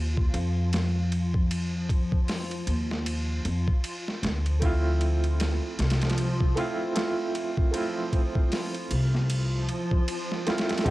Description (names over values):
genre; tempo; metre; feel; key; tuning
trip hop; 77 BPM; 4/4; swing 58% on 16ths; unclear; A4 = 440 Hz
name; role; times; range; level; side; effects
upright bass; bass; 0.0-10.9 s; C2 to F2; -26 LUFS; equal; transformer saturation
backwards swelling texture; texture; 0.0-10.9 s; F3 to F4; -36 LUFS; equal; built-in reverb, cassette tape
boom bap sampler-style drum kit; drums; 0.2-10.9 s; hi-hat, kick drum, ride cymbal, snare drum; -29 LUFS; equal; overdrive, cassette tape
clear upright piano; accompaniment; 4.6-10.9 s; Ab3 to F4; -30 LUFS; right 2 dB; tremolo, cassette tape, tape echo
room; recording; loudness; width
little or no reverb; home recording on cassette; -24 LUFS; side -18 dB against mid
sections
0.0-10.9 A section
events
none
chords
0.0 N.C.; 4.6 Dm7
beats
0.72 | 1.50 2.28 3.06 3.84 | 4.62 5.40 6.18 6.96 | 7.74 8.52 9.30 10.07 | 10.86